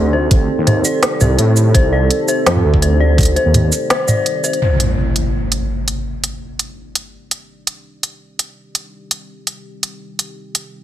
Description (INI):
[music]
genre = half-time drum and bass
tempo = 167 BPM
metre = 4/4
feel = half-time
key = unclear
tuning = A4 = 442 Hz
[part]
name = dark analog pad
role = sustained chords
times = 0.0-10.8 s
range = C4 to F5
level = -22 LUFS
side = right 4 dB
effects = chorus, sidechain pumping
[part]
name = dark detuned synth bell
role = arpeggios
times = 0.0-4.6 s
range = C5 to C6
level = -20 LUFS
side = left 4 dB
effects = chorus, vintage 12-bit sampler grit, dub echo
[part]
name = dark detuned saw bass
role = bass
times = 0.0-3.7 s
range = C2 to A2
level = -14 LUFS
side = equal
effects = none
[part]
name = electronic kick drum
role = drums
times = 0.3-3.3 s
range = none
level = -13 LUFS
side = equal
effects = studio reverb
[part]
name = organic electronic drum kit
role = drums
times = 0.3-10.6 s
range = hi-hat, shaker, snare drum, toms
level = -16 LUFS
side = right 1 dB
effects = studio reverb
[part]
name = impact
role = sound effects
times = 4.6-6.1 s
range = none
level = -18 LUFS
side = equal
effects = none
[sound]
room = light reverb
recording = heavily compressed radio sound, multiband compression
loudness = -14 LUFS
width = side -12 dB against mid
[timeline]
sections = 0.0-4.6 A section; 4.6-10.8 B section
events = break 3.9-4.6; impact 4.6-6.1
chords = 0.0 Cmadd9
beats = | 0.31 0.67 1.03 1.39 | 1.75 2.10 2.46 2.82 | 3.18 3.54 3.90 4.26 | 4.62 4.98 5.34 5.70 | 6.06 6.42 6.78 7.13 | 7.49 7.85 8.21 8.57 | 8.93 9.29 9.65 10.01 | 10.37 10.73